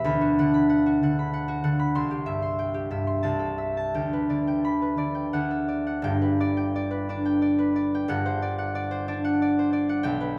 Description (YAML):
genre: classical, solo harp piece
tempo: 83-98 BPM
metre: 3/4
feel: rubato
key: G major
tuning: A4 = 440 Hz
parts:
  - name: concert harp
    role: solo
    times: 0.0-10.4 s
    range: G1 to C6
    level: -25 LUFS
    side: equal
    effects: none
room: wet stone room reverb, RT60 1.4 s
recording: heard from further back in the room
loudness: -25 LUFS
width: mono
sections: 0.0-6.1 A section; 6.1-10.4 B section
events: none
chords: 0.1 Bm/D; 1.9 C; 3.2 Am/C; 3.9 G/D; 5.3 D; 6.1 G; 8.1 D7/G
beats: | 0.06 0.69 1.32 | 1.94 2.58 3.25 | 3.94 4.65 5.35 | 6.06 6.74 7.42 | 8.09 8.75 9.40 | 10.04